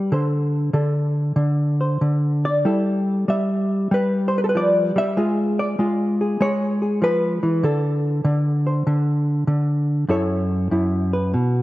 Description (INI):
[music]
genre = solo jazz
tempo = 97 BPM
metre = 4/4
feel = swing 66% on 8ths, rubato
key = unclear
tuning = A4 = 440 Hz
[part]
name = hollow-body jazz guitar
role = solo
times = 0.0-11.6 s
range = F#2 to E5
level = -18 LUFS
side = equal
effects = none
[sound]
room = light reverb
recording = none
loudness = -18 LUFS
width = side -17 dB against mid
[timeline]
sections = 0.0-11.6 A section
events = none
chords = 0.1 D5; 2.7 G13; 5.2 G#dim7; 7.6 D5; 10.1 F#m7